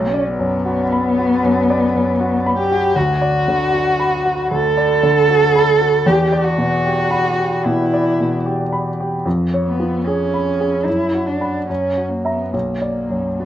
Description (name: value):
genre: classical, romantic duo for cello and grand piano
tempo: 75 BPM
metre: 4/4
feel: uneven beats, rubato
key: B minor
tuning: A4 = 440 Hz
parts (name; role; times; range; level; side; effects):
- dark cello; melody; 0.0-13.5 s; A#3 to A4; -17 LUFS; right 1 dB; none
- clear grand piano; accompaniment; 0.0-13.5 s; B1 to B5; -18 LUFS; equal; none
room: moderate studio reverb, RT60 0.8 s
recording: worn, warbling old tape, cassette tape, warbly pitch drift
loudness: -15 LUFS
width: side -11 dB against mid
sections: 0.0-13.5 A section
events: none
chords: 0.0 Bm; 3.0 Bm/D; 6.0 Em7; 9.3 C#7/E#; 10.9 Bm/F#; 11.7 F#7; 12.5 Bm